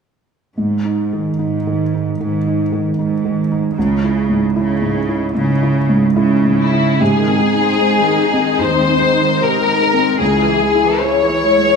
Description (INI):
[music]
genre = cinematic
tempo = 75 BPM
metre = 4/4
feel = rubato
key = Ab major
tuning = A4 = 440 Hz
[part]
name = felt-muted upright piano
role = accompaniment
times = 0.6-11.8 s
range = Db2 to C5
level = -16 LUFS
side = right 2 dB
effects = none
[part]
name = clear symphonic cello section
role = bass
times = 0.6-10.9 s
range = Eb2 to Db3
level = -20 LUFS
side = right 2 dB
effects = none
[part]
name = clear symphonic violin section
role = second line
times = 6.6-11.8 s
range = Fb4 to Db5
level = -14 LUFS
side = left 5 dB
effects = none
[part]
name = dark symphonic viola section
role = accompaniment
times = 7.0-11.8 s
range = C3 to Fb4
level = -20 LUFS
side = right 2 dB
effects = none
[sound]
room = moderate scoring stage reverb, RT60 1.5 s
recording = minimal, uncompressed stereo recording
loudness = -13 LUFS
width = side -5 dB against mid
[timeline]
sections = 0.6-7.0 A section; 7.0-11.8 B section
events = none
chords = 0.6 Ab5; 3.8 Dbm; 7.0 Ab; 10.2 Dbm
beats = | 0.58 1.40 2.20 2.98 | 3.76 4.56 5.35 6.16 | 7.00 7.80 8.60 9.40 | 10.21 11.04